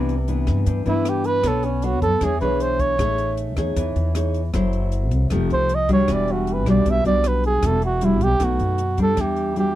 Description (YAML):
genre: bossa nova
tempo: 155 BPM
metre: 4/4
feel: straight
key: E minor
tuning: A4 = 440 Hz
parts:
  - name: nylon-string guitar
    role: accompaniment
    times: 0.0-9.8 s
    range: G2 to C#5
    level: -23 LUFS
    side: left 2 dB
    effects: none
  - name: upright bass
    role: bass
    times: 0.0-9.8 s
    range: E1 to G2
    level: -23 LUFS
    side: equal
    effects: none
  - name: compact cocktail drum kit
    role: drums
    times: 0.1-9.7 s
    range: hi-hat, kick drum, rim click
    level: -28 LUFS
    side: equal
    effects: none
  - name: mellow flugelhorn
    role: melody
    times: 0.9-9.8 s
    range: C#4 to E5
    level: -22 LUFS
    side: right 3 dB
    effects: none
room: little or no reverb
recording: dry, close 1970s-style studio recording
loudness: -18 LUFS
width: side -13 dB against mid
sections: 0.0-9.2 A section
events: flugelhorn solo 0.0-9.2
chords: 0.0 Cmaj9; 1.4 Bm9; 2.2 E6; 3.0 Amaj7#11; 4.5 F#m7b5; 5.3 F9; 6.1 Em9; 8.4 B7b13; 9.2 Em9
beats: 0.28 0.67 1.06 | 1.44 1.83 2.22 2.60 | 2.99 3.38 3.76 4.15 | 4.54 4.92 5.31 5.69 | 6.08 6.47 6.85 7.24 | 7.63 8.02 8.40 8.79 | 9.18 9.56